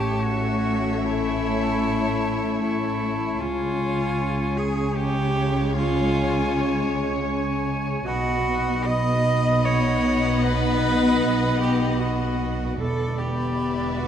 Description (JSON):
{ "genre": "cinematic", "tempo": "76 BPM", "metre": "3/4", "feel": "rubato", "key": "unclear", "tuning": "A4 = 440 Hz", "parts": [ { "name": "rich cello", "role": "melody", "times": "0.0-14.1 s", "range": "E4 to D#5", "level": "-28 LUFS", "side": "right 1 dB", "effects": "none" }, { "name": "rich symphonic violin section", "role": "melody", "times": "0.0-14.1 s", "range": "C#5 to F#5", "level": "-37 LUFS", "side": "left 5 dB", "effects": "none" }, { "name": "bright silver concert flute", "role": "second line", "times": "0.0-14.1 s", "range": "G#5 to B5", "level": "-32 LUFS", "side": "left 2 dB", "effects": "none" }, { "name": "clear oboe", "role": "second line", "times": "0.0-14.1 s", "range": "C#5 to D#5", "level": "-33 LUFS", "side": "right 1 dB", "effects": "none" }, { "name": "warm clarinet", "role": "second line", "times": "0.0-14.1 s", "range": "E4 to D#5", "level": "-32 LUFS", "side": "left 2 dB", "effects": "none" }, { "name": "warm symphonic violin section", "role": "second line", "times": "0.0-14.1 s", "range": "C#5 to D#5", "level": "-36 LUFS", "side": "left 3 dB", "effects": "none" }, { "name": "warm symphonic viola section", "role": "accompaniment", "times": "0.0-14.1 s", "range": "G#3 to B3", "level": "-31 LUFS", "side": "left 1 dB", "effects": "none" }, { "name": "dark French horn section", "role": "sustained chords", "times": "0.0-14.1 s", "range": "D3 to D#4", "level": "-28 LUFS", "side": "left 4 dB", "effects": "none" }, { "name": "rich studio double bass section", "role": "bass", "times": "0.0-14.1 s", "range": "E1 to C#2", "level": "-28 LUFS", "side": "right 2 dB", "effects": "none" }, { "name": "warm symphonic cello section", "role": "bass", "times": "0.0-14.1 s", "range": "E2 to C#3", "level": "-28 LUFS", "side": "right 2 dB", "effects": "none" } ], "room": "wet scoring stage reverb, RT60 2.0 s", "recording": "none", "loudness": "-20 LUFS", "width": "side -9 dB against mid", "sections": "0.0-14.1 A section", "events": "none", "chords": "0.0 A; 3.4 C#; 8.1 B; 12.8 Em7" }